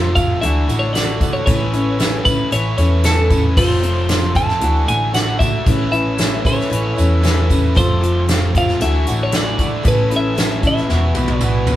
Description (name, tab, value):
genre	folk rock and heartland rock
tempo	115 BPM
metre	4/4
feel	straight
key	A major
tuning	A4 = 441 Hz
part	twelve-string electric guitar	melody	0.0-11.7 s	A4 to A5	-21 LUFS	equal	none
part	picked steel-string acoustic guitar	accompaniment	0.0-11.8 s	D3 to B4	-22 LUFS	left 2 dB	none
part	hand-pumped harmonium	sustained chords	0.0-11.8 s	B3 to C5	-28 LUFS	equal	none
part	overdriven electric guitar	riff	0.0-11.8 s	E2 to A4	-24 LUFS	right 1 dB	none
part	hollow-body short-scale picked electric bass	bass	0.0-11.8 s	E1 to E2	-18 LUFS	equal	none
part	soft brush drum kit	drums	0.2-11.8 s	crash cymbal, hi-hat, kick drum, snare drum, toms	-19 LUFS	right 1 dB	none
part	tambourine	percussion	0.2-11.8 s	none	-34 LUFS	right 5 dB	none
room	moderate studio reverb, RT60 0.6 s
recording	band playing live in one room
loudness	-14 LUFS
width	side -13 dB against mid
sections	0.0-11.8 A section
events	drum fill 10.9-11.8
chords	0.4 Dadd9; 1.5 Aadd9; 3.6 F; 4.6 Dadd9; 5.7 Aadd9; 7.8 F; 8.8 Dadd9; 9.8 Aadd9; 10.9 Esus2